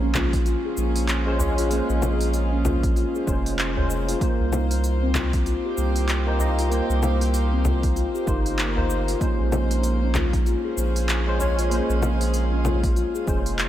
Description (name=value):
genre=organic downtempo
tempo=96 BPM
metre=4/4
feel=swing 59% on 16ths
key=Bb dorian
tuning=A4 = 440 Hz
part: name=barky tine electric piano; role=accompaniment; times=0.0-13.7 s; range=Ab3 to Eb5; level=-30 LUFS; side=left 1 dB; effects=overdrive, ensemble chorus, sidechain pumping, tape echo
part: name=warm chamber string section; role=sustained chords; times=0.0-13.7 s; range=Bb3 to C5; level=-32 LUFS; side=equal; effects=sidechain pumping
part: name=steel tongue drum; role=arpeggios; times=0.0-13.5 s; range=Bb3 to Ab4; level=-28 LUFS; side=equal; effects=tape echo
part: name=round analog bass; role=bass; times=0.0-13.7 s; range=F1 to C2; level=-23 LUFS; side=equal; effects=sidechain pumping
part: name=deep house drum kit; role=drums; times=0.1-13.7 s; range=cabasa, congas, handclaps, hi-hat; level=-29 LUFS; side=left 1 dB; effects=none
part: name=udu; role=percussion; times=0.2-12.8 s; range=none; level=-29 LUFS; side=equal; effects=none
part: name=electronic kick drum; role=drums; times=0.3-13.4 s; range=none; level=-25 LUFS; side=equal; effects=none
room=light reverb, small room ambience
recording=none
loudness=-20 LUFS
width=side -12 dB against mid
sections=0.0-13.7 A section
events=none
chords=0.0 Bbm9; 4.2 Cm7; 9.2 Bbm9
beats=0.46 1.09 | 1.71 2.34 2.96 3.59 | 4.21 4.84 5.46 6.09 | 6.71 7.34 7.96 8.59 | 9.21 9.84 10.46 11.09 | 11.71 12.34 12.96 13.59